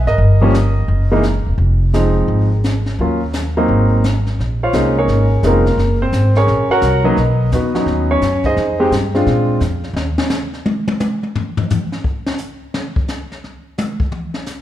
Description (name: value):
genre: jazz piano trio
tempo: 172 BPM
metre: 4/4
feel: swing 64% on 8ths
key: Bb minor from 4.4 s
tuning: A4 = 439 Hz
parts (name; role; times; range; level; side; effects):
- warm grand piano; melody; 0.0-9.6 s; Fb3 to Gb5; -16 LUFS; equal; none
- upright bass; bass; 0.1-10.2 s; Fb1 to Bb2; -16 LUFS; equal; none
- jazz brush drum kit; drums; 0.1-14.6 s; brushed snare drum, hi-hat, kick drum, snare drum, toms; -22 LUFS; left 1 dB; none
room: moderate recital hall reverb, RT60 1.6 s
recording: recorded in a church or concert hall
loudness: -13 LUFS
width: side -12 dB against mid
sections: 0.0-4.4 A section; 4.4-14.6 B section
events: grand piano solo 4.4-14.6; drum solo 10.0-14.6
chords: 0.2 Gm; 0.9 Gb13; 1.6 Fm7; 3.0 Ebm7; 3.7 Ab9; 4.4 Bbm11; 5.8 Gbadd9; 7.2 Bmaj7; 8.6 Fm9; 9.3 Bb9; 10.0 N.C.